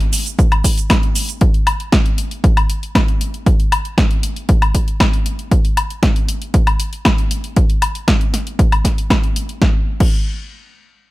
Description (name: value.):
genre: nu-disco.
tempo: 117 BPM.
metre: 4/4.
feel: straight.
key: none.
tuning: none.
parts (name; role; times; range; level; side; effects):
house drum kit; drums; 0.0-10.2 s; cabasa, crash cymbal, hi-hat, snare drum, woodblock; -19 LUFS; left 1 dB; none.
electronic kick drum; drums; 0.4-10.2 s; none; -14 LUFS; equal; none.
room: digital ambience.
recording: none.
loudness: -13 LUFS.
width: side -19 dB against mid.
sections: 0.0-9.6 A section; 9.6-11.1 B section.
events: none.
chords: none.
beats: 0.39 0.90 | 1.41 1.92 2.44 2.95 | 3.46 3.98 4.49 5.00 | 5.51 6.03 6.54 7.05 | 7.57 8.08 8.59 9.10 | 9.62 10.13.